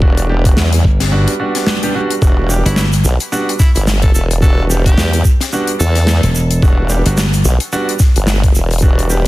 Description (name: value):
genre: glitch hop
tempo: 109 BPM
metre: 4/4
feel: swing 58% on 16ths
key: E minor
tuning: A4 = 440 Hz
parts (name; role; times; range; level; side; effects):
- clear baby grand piano; stabs; 0.0-9.2 s; G3 to G4; -20 LUFS; right 2 dB; vintage 12-bit sampler grit, sidechain pumping, dub echo
- formant-sweep wobble bass; bass; 0.0-9.3 s; E1 to E2; -13 LUFS; equal; chorus, tube saturation
- electronic kick drum; drums; 0.0-9.0 s; none; -11 LUFS; equal; none
- gated 80s drum kit; drums; 0.2-9.3 s; hi-hat, snare drum; -19 LUFS; left 1 dB; none
- glassy slap bass; bass; 0.8-7.4 s; E1 to G1; -13 LUFS; equal; none
- tube shaker; percussion; 2.2-9.3 s; none; -25 LUFS; right 2 dB; none
- edgy tenor saxophone; melody; 2.7-6.3 s; E4 to A4; -26 LUFS; equal; dub echo
room: small room ambience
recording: dense, heavily limited modern master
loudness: -11 LUFS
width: side -18 dB against mid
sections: 0.0-9.3 A section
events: none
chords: 0.0 Em9